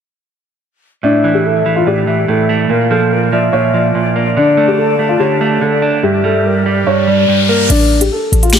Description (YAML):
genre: hip hop, drill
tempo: 144 BPM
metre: 4/4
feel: half-time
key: unclear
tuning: A4 = 439 Hz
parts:
  - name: dark baby grand piano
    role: melody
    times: 1.0-8.6 s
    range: D4 to D5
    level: -15 LUFS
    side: left 2 dB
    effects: tape echo
  - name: soft octave-layered synth lead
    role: second line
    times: 1.0-7.7 s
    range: Bb4 to F5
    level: -18 LUFS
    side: left 3 dB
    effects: chorus, phaser, tape echo
  - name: clean electric guitar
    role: accompaniment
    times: 1.0-7.7 s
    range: G2 to D4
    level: -14 LUFS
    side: right 5 dB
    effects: tape echo
  - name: flute section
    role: sustained chords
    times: 1.0-7.7 s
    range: D4 to A5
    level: -22 LUFS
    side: left 4 dB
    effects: none
  - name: riser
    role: sound effects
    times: 6.8-7.7 s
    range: none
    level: -20 LUFS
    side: left 2 dB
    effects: none
  - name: short 808-style bass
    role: bass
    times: 7.7-8.6 s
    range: A1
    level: -12 LUFS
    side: left 1 dB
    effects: none
  - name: drill drum kit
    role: drums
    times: 7.7-8.6 s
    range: crash cymbal, finger snaps, hi-hat, snare drum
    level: -16 LUFS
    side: left 1 dB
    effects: none
room: light reverb, digital ambience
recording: echo-heavy mix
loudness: -10 LUFS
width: side -8 dB against mid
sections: 1.0-7.7 A section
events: riser 6.8-7.7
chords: 1.0 Asus4; 2.7 Bb; 4.4 Dm; 6.0 Gm; 7.7 Asus4